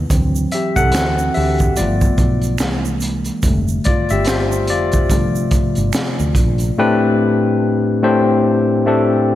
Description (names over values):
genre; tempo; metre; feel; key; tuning
R&B, neo-soul; 72 BPM; 4/4; swing 59% on 16ths; A minor; A4 = 440 Hz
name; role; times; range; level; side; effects
tine electric piano; accompaniment; 0.0-9.3 s; A2 to F#5; -16 LUFS; left 2 dB; slapback echo
woody fretless electric bass; bass; 0.0-6.7 s; F1 to D2; -20 LUFS; right 1 dB; none
crunchy breakbeat drum kit; drums; 0.1-6.7 s; hi-hat, kick drum, snare drum; -19 LUFS; right 1 dB; none
tube shaker and finger snaps; percussion; 0.1-6.8 s; none; -31 LUFS; right 8 dB; none
room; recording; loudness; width
moderate concert hall reverb, RT60 2.5 s; big arena sound; -14 LUFS; side -13 dB against mid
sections
0.0-6.8 A section; 6.8-9.3 B section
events
tine electric piano solo 0.0-6.8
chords
0.1 D9; 1.8 G7; 2.6 Caug7; 3.4 F69; 5.1 G9sus4; 6.8 Am11